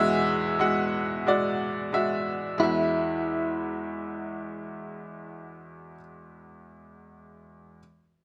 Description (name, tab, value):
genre	pop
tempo	90 BPM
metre	4/4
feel	straight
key	E mixolydian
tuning	A4 = 438 Hz
part	direct-recorded clean electric guitar	melody	0.0-5.9 s	E4 to G#4	-32 LUFS	equal	none
part	bright upright piano	accompaniment	0.0-7.8 s	E2 to F#5	-29 LUFS	equal	none
room	little or no reverb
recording	recorded outdoors, with no room sound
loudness	-27 LUFS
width	mono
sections	0.0-2.6 A section; 2.6-5.3 B section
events	none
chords	0.0 Eadd9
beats	0.60 1.27 1.94 | 2.60 3.27 3.94 4.61